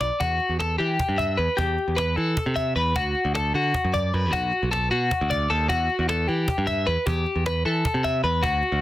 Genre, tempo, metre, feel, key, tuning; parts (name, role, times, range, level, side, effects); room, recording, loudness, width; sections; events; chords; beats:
math rock and midwest emo; 306 BPM (eighths); 7/8; straight; A4 = 438 Hz
twelve-string electric guitar; arpeggios; 0.0-8.8 s; F#4 to E5; -24 LUFS; left 2 dB
modern bright picked electric bass; bass; 0.0-8.8 s; B1 to E3; -25 LUFS; right 1 dB
cajon; drums; 0.0-8.7 s; -30 LUFS; right 1 dB
light reverb; dense, heavily limited modern master; -21 LUFS; side -14 dB against mid
0.2-8.8 A section
drum fill 0.0
0.2 Emadd9; 1.6 Am9/E; 3.0 D; 4.3 Bm7; 5.7 Emadd9; 7.1 Am9/E
0.01 | 0.20 0.40 0.60 0.79 0.99 1.19 1.38 | 1.58 1.78 1.97 2.17 2.37 2.56 2.76 | 2.96 3.15 3.35 3.54 3.74 3.94 4.13 | 4.33 4.52 4.72 4.91 5.11 5.30 5.50 | 5.70 5.89 6.09 6.28 6.48 6.67 6.87 | 7.07 7.26 7.46 7.65 7.85 8.04 8.24 | 8.44 8.63